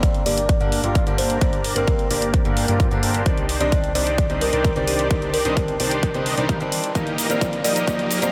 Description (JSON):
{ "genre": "EDM, festival progressive house", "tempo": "130 BPM", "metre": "4/4", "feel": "straight", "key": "G minor", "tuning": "A4 = 441 Hz", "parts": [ { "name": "buzzing kalimba", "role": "melody", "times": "0.0-8.3 s", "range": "G4 to D5", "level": "-28 LUFS", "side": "equal", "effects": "digital delay" }, { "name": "fingerpicked swing-style acoustic guitar", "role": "accompaniment", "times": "0.0-8.3 s", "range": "D3 to D5", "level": "-30 LUFS", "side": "equal", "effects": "sidechain pumping, digital delay" }, { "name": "lush unison pad", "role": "sustained chords", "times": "0.0-8.3 s", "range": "G4 to C6", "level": "-38 LUFS", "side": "equal", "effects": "none" }, { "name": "dense compressed supersaw", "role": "riff", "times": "0.0-8.3 s", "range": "Bb3 to F5", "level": "-28 LUFS", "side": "equal", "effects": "sidechain pumping, low-pass filter" }, { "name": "fat analog bass", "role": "bass", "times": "0.0-8.3 s", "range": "Eb1 to C2", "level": "-31 LUFS", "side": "equal", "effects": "tube saturation, sidechain pumping" }, { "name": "electronic hi-hat and shaker", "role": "drums", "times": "0.0-8.3 s", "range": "none", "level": "-30 LUFS", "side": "equal", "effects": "none" }, { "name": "electronic kick drum", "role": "drums", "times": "0.0-8.0 s", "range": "none", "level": "-24 LUFS", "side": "equal", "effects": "overdrive" }, { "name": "riser", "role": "sound effects", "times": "4.2-8.3 s", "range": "none", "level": "-36 LUFS", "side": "equal", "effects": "none" } ], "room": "light reverb, digital ambience", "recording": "high-pass filter", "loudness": "-20 LUFS", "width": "mono", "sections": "0.0-8.3 A section", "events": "build-up 0.0-8.3; filter sweep on supersaw synth 0.0-8.3; filter sweep 0.0-8.3; drum fill 7.0-8.3", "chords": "0.0 Gm; 3.3 Cmadd9; 7.0 Eb", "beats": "0.03 0.49 0.95 | 1.41 1.88 2.34 2.80 | 3.26 3.72 4.18 4.64 | 5.11 5.57 6.03 6.49 | 6.95 7.41 7.88" }